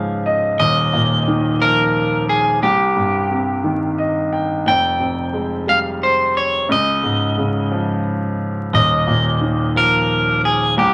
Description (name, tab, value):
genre	pop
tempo	59 BPM (dotted quarters)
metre	6/8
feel	straight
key	unclear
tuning	A4 = 440 Hz
part	electric guitar at the edge of break-up	melody	0.0-10.9 s	G4 to G5	-19 LUFS	equal	spring reverb
part	warm concert grand piano	accompaniment	0.0-10.9 s	Eb1 to G5	-21 LUFS	equal	none
room	wet studio reverb, RT60 0.6 s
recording	vinyl crackle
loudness	-18 LUFS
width	mono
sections	0.0-10.9 A section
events	grand piano fill 0.0-0.6, 3.6-4.7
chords	0.0 Db; 0.6 Ebsus2; 2.6 Cm; 4.7 Fmadd9; 6.7 Dbadd9; 8.7 Ebsus2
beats	| 0.59 1.61 | 2.63 3.65 | 4.67 5.68 | 6.70 7.72 | 8.73 9.75 | 10.77